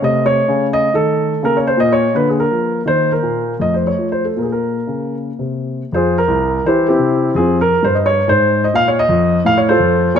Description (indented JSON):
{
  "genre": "classical, baroque-style suite movement for grand piano",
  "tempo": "76-86 BPM (dotted quarters)",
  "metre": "6/8",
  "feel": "rubato",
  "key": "Bb minor, F minor from 5.9 s",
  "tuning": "A4 = 440 Hz",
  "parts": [
    { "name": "warm concert grand piano", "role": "solo", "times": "0.0-10.2 s", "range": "C2 to F5", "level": "-13 LUFS", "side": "equal", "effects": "none" }
  ],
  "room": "moderate concert hall reverb, RT60 1.9 s",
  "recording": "close, detailed microphones",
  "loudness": "-13 LUFS",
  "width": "side -8 dB against mid",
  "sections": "0.0-5.9 A section; 5.9-10.2 A section",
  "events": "none",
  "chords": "0.0 Cm6; 1.4 Bbm/Db; 2.1 Bb/D; 2.9 Eb5; 3.6 F; 4.4 Bbm; 5.9 Fm; 6.6 C/E; 7.4 Fm; 8.8 Bb5; 9.5 F/A"
}